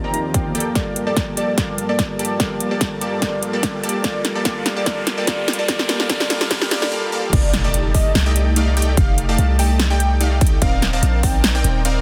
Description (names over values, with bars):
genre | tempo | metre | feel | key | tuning
future bass | 146 BPM | 4/4 | half-time | G minor | A4 = 444 Hz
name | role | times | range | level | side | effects
warm velvety synth lead | melody | 0.0-11.7 s | D5 to Bb5 | -29 LUFS | equal | chorus, sidechain pumping, digital delay
tine electric piano | accompaniment | 0.0-7.4 s | Eb3 to F5 | -30 LUFS | equal | sidechain pumping, digital delay
airy breathy pad | sustained chords | 0.0-6.9 s | Eb2 to A5 | -35 LUFS | equal | chorus, sidechain pumping
supersaw stab | riff | 0.0-12.0 s | A3 to A5 | -27 LUFS | equal | sidechain pumping, digital delay
big-room dance drum kit | drums | 0.1-11.9 s | crash cymbal, hi-hat, snare drum | -24 LUFS | equal | none
electronic kick drum | drums | 0.3-11.3 s | none | -23 LUFS | equal | none
riser and impact | sound effects | 2.9-9.0 s | none | -32 LUFS | equal | none
warm 808-style bass | bass | 7.3-12.0 s | Eb1 to C2 | -20 LUFS | equal | sidechain pumping
room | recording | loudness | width
light reverb, digital ambience | dense, heavily limited modern master, high-pass filter | -19 LUFS | mono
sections
0.0-7.3 A section; 7.3-12.0 B section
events
build-up 0.0-7.3; filter sweep on supersaw synth 0.0-7.3; filter sweep on analog synth pad 0.0-7.3; filter sweep 0.0-7.3; drum fill 0.8-6.9; riser 2.9-6.9; drop 7.3-12.0; impact 7.3-9.0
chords
0.0 Cm11/Eb; 0.5 Gm9; 7.3 F13; 10.6 Cm11/Eb